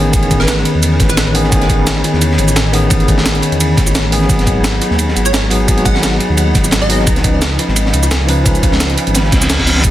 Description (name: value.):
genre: liquid drum and bass.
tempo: 173 BPM.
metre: 4/4.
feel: swing 53% on 16ths.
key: unclear.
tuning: A4 = 435 Hz.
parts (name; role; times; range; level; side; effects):
tine electric piano; accompaniment; 0.0-9.9 s; D#3 to B4; -16 LUFS; left 1 dB; medium tremolo.
glassy FM pad; sustained chords; 0.0-9.9 s; C#5 to B5; -24 LUFS; left 2 dB; ensemble chorus, built-in reverb.
dark detuned saw bass; bass; 0.0-9.9 s; G#1 to E2; -16 LUFS; equal; none.
breakbeat sampler-style drum kit; drums; 0.1-9.9 s; hi-hat, shaker, snare drum; -18 LUFS; right 2 dB; studio ambience.
crunchy breakbeat drum kit; drums; 0.1-9.9 s; ride cymbal, snare drum; -21 LUFS; equal; high-pass filter on cymbals, studio ambience, high-pass filter on snare, high-pass filter on room.
electronic kick drum; drums; 0.1-9.9 s; none; -15 LUFS; equal; studio ambience.
plucky unison lead; melody; 0.4-1.3, 5.3-7.1 s; B4 to F#5; -23 LUFS; right 1 dB; analog chorus, digital delay.
reverse cymbal; sound effects; 9.3-9.8 s; none; -16 LUFS; equal; none.
room: light reverb.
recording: dense, heavily limited modern master.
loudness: -10 LUFS.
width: side -13 dB against mid.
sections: 0.0-9.9 A section.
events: reverse cymbal 9.3-9.8.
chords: 0.0 Amaj9#11; 4.3 G#m7; 7.1 C#9.